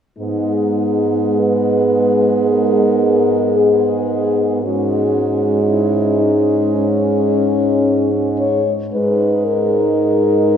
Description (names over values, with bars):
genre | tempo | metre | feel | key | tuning
classical, lyrical piece for horn quartet | 47-60 BPM | 4/4 | rubato | G# minor | A4 = 440 Hz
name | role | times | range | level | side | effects
mellow French horn | melody | 0.2-10.6 s | C#4 to C#5 | -18 LUFS | left 3 dB | none
dark French horn | second line | 0.2-10.6 s | B3 to D#4 | -21 LUFS | right 5 dB | none
warm French horn | accompaniment | 0.2-10.6 s | G#3 | -19 LUFS | equal | none
mellow French horn | bass | 0.2-10.6 s | G#2 | -20 LUFS | right 1 dB | none
room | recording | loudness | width
wet cathedral reverb, RT60 6.0 s | recorded in a church or concert hall | -13 LUFS | side -8 dB against mid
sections
0.2-10.6 A section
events
none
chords
0.2 G#m